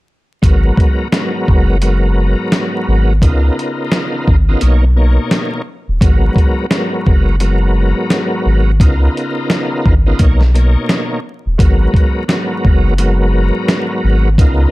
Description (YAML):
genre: hip hop, boom-bap hip-hop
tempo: 86 BPM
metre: 4/4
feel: swing 60% on 16ths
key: G# dorian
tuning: A4 = 438 Hz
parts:
  - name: bright tonewheel organ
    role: accompaniment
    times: 0.4-14.7 s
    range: G#2 to C#5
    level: -17 LUFS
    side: equal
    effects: chorus vibrato, slow rotary speaker, cassette tape, high-pass filter, low-pass filter
  - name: soft dub sub bass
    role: bass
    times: 0.4-14.7 s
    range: D#1 to C#2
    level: -12 LUFS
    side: equal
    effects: none
  - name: dusty soul sampler-style drum kit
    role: drums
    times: 0.4-14.6 s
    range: hi-hat, kick drum, snare drum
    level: -13 LUFS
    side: equal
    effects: none
room: little or no reverb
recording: dark, warm production, vinyl crackle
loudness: -11 LUFS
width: side -19 dB against mid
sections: 0.4-14.7 A section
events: none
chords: 0.4 G#m9; 3.2 C#13; 4.6 Bmaj9; 6.0 G#m9; 8.8 C#13; 10.2 Bmaj9; 11.6 G#m9